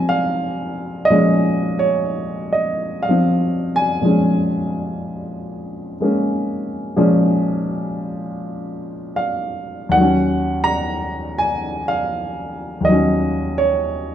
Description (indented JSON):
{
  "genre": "solo jazz",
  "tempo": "82 BPM",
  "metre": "4/4",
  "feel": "swing 69% on 8ths, rubato",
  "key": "Bb minor",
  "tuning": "A4 = 441 Hz",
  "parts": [
    { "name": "warm baby grand piano", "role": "solo", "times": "0.0-14.1 s", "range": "Eb2 to Bb5", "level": "-17 LUFS", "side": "equal", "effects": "none" }
  ],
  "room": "wet large studio reverb, RT60 1.3 s",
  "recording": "band playing live in one room",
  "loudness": "-17 LUFS",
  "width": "side -10 dB against mid",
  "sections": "0.0-14.1 A section",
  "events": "none",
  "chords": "0.0 Bbm7; 9.9 Ebm7"
}